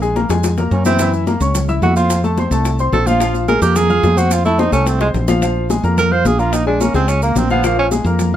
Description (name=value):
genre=Afro-Cuban jazz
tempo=217 BPM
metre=4/4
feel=straight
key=Bb minor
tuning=A4 = 439 Hz
part: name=warm grand piano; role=accompaniment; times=0.0-8.4 s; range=E3 to F6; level=-19 LUFS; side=left 3 dB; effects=none
part: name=woody fretless electric bass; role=bass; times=0.0-8.4 s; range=Bb1 to Gb2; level=-17 LUFS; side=equal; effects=none
part: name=bongos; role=percussion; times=0.0-8.3 s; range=none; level=-25 LUFS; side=left 8 dB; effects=none
part: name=congas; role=percussion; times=0.0-8.4 s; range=none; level=-23 LUFS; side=equal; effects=none
part: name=maracas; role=percussion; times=0.0-8.3 s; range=none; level=-30 LUFS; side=right 6 dB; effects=none
part: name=breathy tenor saxophone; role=second line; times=0.7-7.9 s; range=Ab3 to C5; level=-17 LUFS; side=right 4 dB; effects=none
room=little or no reverb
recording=close, detailed microphones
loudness=-13 LUFS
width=side -11 dB against mid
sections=0.0-5.4 A section; 5.4-8.4 A section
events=tenor saxophone solo 0.0-8.4; drum fill 0.3-1.0, 5.0-5.4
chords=0.0 Bb5; 1.0 Gb7; 2.1 F; 3.2 Bb5; 4.3 F; 5.4 Bbm7